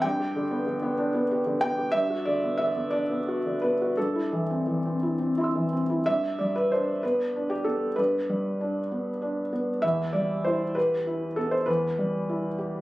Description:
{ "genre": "neoclassical minimalist piano", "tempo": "57-66 BPM (dotted quarters)", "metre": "6/8", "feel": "rubato", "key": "G major", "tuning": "A4 = 437 Hz", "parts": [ { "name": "felt-muted upright piano", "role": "solo", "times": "0.0-12.8 s", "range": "E2 to E6", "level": "-24 LUFS", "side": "equal", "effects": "none" } ], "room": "little or no reverb", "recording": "recorded on a phone in the room, club reverb, compression", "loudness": "-24 LUFS", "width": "side -17 dB against mid", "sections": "0.0-6.0 A section; 6.0-12.8 B section", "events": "none", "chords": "0.0 G; 1.9 Bm/G; 4.0 Am/G; 6.0 G; 9.8 Em" }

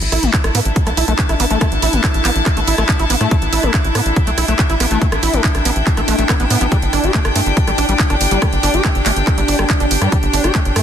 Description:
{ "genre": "psychedelic trance", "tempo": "141 BPM", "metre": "4/4", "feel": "straight", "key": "unclear", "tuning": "A4 = 440 Hz", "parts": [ { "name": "evolving wavetable pad", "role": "sustained chords", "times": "0.1-10.8 s", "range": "D4", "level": "-24 LUFS", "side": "equal", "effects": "chorus, built-in reverb, sidechain pumping" }, { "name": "tight sequencer bass", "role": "bass", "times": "0.0-10.8 s", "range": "G1 to A2", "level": "-18 LUFS", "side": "equal", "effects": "none" }, { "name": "techno drum kit", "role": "drums", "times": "0.0-10.8 s", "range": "handclaps, hi-hat, rim click", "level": "-20 LUFS", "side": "right 2 dB", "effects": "none" }, { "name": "bright chamber string section", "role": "texture", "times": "0.0-10.8 s", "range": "D4 to A5", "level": "-22 LUFS", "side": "left 2 dB", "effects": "sidechain pumping" }, { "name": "screaming distorted acid line", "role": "riff", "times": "0.1-10.8 s", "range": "G3 to G4", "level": "-21 LUFS", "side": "moving between left 2 dB and right 5 dB", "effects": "distortion, chorus, auto-pan, vintage 12-bit sampler grit, sidechain pumping, dub echo" }, { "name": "electronic kick drum", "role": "drums", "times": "0.3-10.6 s", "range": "none", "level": "-16 LUFS", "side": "equal", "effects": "none" } ], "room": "light reverb", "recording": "dense, heavily limited modern master, lossy compression artefacts", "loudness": "-13 LUFS", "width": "side -9 dB against mid", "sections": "0.0-10.8 A section", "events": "none", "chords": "0.0 A5; 6.7 G5" }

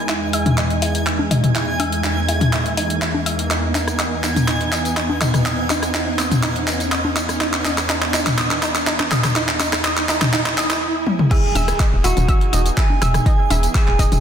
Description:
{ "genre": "progressive house", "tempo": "123 BPM", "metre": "4/4", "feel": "straight", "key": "E major", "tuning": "A4 = 435 Hz", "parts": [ { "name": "lush unison pad", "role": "sustained chords", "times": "0.0-14.2 s", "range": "E2 to G#4", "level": "-24 LUFS", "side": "right 1 dB", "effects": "chorus, sidechain pumping" }, { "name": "riser and impact", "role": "sound effects", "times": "1.0-13.3 s", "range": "none", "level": "-28 LUFS", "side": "right 1 dB", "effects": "none" }, { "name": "backwards swelling texture", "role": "texture", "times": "0.0-14.2 s", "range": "G#5 to G#6", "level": "-30 LUFS", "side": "left 1 dB", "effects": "built-in reverb, sidechain pumping" }, { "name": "analog pluck", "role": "arpeggios", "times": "0.1-14.0 s", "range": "D#4 to E6", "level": "-25 LUFS", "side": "right 1 dB", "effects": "chorus, sidechain pumping, dub echo" }, { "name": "deep house drum kit", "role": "drums", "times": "0.1-14.2 s", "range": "crash cymbal, handclaps, hi-hat, rim click, tambourine, toms", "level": "-22 LUFS", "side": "equal", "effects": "overdrive, soft clipping on snare" }, { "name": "punchy analog drum machine", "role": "percussion", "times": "0.5-14.2 s", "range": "congas, rim click, toms", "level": "-22 LUFS", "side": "left 2 dB", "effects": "sidechain pumping on perc, sidechain pumping on toms, soft clipping on snare, sidechain pumping on snare" }, { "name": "electric guitar at the edge of break-up", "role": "melody", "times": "11.3-14.2 s", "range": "F#4 to G#4", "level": "-24 LUFS", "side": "right 6 dB", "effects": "tremolo, sidechain pumping, digital delay" }, { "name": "soft round pluck", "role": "second line", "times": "11.3-14.2 s", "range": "F#4 to G#4", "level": "-31 LUFS", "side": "left 4 dB", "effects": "lush chorus, cassette tape, sidechain pumping, dub echo" }, { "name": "electronic kick drum", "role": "drums", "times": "11.3-14.1 s", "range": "none", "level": "-16 LUFS", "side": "equal", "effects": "overdrive" }, { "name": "tight sequencer bass", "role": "bass", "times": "11.6-14.2 s", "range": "E1", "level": "-19 LUFS", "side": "equal", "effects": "sidechain pumping" } ], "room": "wet recital hall reverb, RT60 1.3 s, digital ambience", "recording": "dense, heavily limited modern master", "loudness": "-16 LUFS", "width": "side -8 dB against mid", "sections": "0.0-11.3 A section; 11.3-14.2 B section", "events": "build-up 0.0-11.3; drum fill 0.0-10.8, 11.1; filter sweep on synth arpeggio sound 0.0-11.3; filter sweep on analog synth pad 0.0-11.3; riser 1.0-10.8; drop 11.3-14.2; impact 11.3-13.3", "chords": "0.0 Emaj7" }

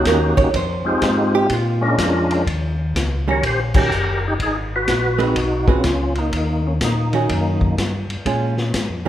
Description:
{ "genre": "soul jazz organ trio", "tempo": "124 BPM", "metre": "4/4", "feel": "swing 66% on 8ths", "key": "unclear", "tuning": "A4 = 440 Hz", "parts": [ { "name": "percussive tonewheel organ", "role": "melody", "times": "0.0-7.8 s", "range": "Ab3 to Db5", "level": "-20 LUFS", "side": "equal", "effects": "slow rotary speaker, overdrive, chorus vibrato" }, { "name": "archtop guitar, miked and amplified", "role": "accompaniment", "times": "0.0-9.1 s", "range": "Eb3 to Db5", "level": "-22 LUFS", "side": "right 4 dB", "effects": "none" }, { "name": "mellow tonewheel organ", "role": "bass", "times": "0.0-9.1 s", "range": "F#1 to Bb2", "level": "-22 LUFS", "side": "left 1 dB", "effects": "slow rotary speaker" }, { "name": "vintage drum kit", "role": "drums", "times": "0.1-8.9 s", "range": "crash cymbal, hi-hat, kick drum, ride cymbal, snare drum", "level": "-23 LUFS", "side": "left 1 dB", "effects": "none" } ], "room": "moderate recital hall reverb, RT60 1.6 s", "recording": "recorded in a church or concert hall", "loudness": "-16 LUFS", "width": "side -12 dB against mid", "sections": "0.0-2.5 A section; 2.5-9.1 B section", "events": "hollow-body jazz guitar solo 0.0-2.5; band accent 3.7", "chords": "0.0 Eb7#9; 0.5 Fm7; 1.5 Bb7#9; 2.5 Eb7#9; 4.4 Ab7#9; 6.3 Eb7#9; 8.3 Bbm7" }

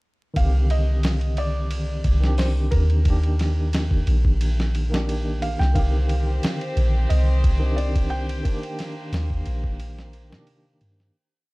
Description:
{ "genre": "trip hop", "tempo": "89 BPM", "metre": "4/4", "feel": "straight", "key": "unclear", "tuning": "A4 = 440 Hz", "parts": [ { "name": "barky tine electric piano", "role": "accompaniment", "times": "0.3-11.2 s", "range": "D3 to G4", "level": "-30 LUFS", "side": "equal", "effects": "overdrive, tremolo" }, { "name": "felt-muted upright piano", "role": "melody", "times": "0.4-10.4 s", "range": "Bb4 to G5", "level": "-33 LUFS", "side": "right 1 dB", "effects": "vintage 12-bit sampler grit, tape echo" }, { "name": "soft 808-style bass", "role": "bass", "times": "0.4-11.1 s", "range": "Bb1 to C3", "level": "-21 LUFS", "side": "equal", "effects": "tube saturation" }, { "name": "dusty soul sampler-style drum kit", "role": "drums", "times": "0.4-11.1 s", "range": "hi-hat, kick drum, ride cymbal, snare drum", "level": "-26 LUFS", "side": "equal", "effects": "studio ambience" }, { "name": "warm studio violin section", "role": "sustained chords", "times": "5.7-11.1 s", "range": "Bb3 to C5", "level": "-35 LUFS", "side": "left 1 dB", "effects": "none" } ], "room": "little or no reverb", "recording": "dark, warm production, vinyl crackle", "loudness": "-20 LUFS", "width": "side -23 dB against mid", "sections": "0.4-11.1 groove", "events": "fade-out 7.6-11.1", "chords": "0.4 Cmadd9; 3.1 Ebmaj7" }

